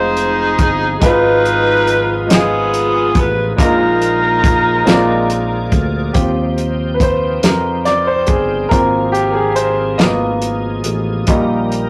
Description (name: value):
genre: slow gospel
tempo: 47 BPM (dotted quarters)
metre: 6/8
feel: straight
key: Eb major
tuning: A4 = 440 Hz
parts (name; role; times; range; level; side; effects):
- mellow saxophone section; melody; 0.0-5.7 s; Cb4 to C5; -17 LUFS; equal; none
- clear concert grand piano; accompaniment; 0.0-11.9 s; Ab2 to Eb5; -19 LUFS; equal; none
- bright tonewheel organ; sustained chords; 0.0-11.9 s; Cb3 to G5; -28 LUFS; equal; slow rotary speaker, overdrive, chorus vibrato
- fingered electric bass; bass; 0.0-11.9 s; F1 to F2; -24 LUFS; equal; none
- warm soul drum kit; drums; 0.2-11.9 s; hi-hat, kick drum, snare drum; -17 LUFS; equal; none
room: wet small room reverb, RT60 0.6 s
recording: rough rehearsal-room recording, warm saturation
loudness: -14 LUFS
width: mono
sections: 0.0-6.1 A section; 6.1-11.9 B section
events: grand piano solo 6.1-11.9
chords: 0.0 Fm7; 1.0 Abm6; 3.6 Bb7sus4; 4.9 Bb7; 6.1 Eb69; 8.7 Ab69; 10.0 Abm6; 11.3 Eb/Bb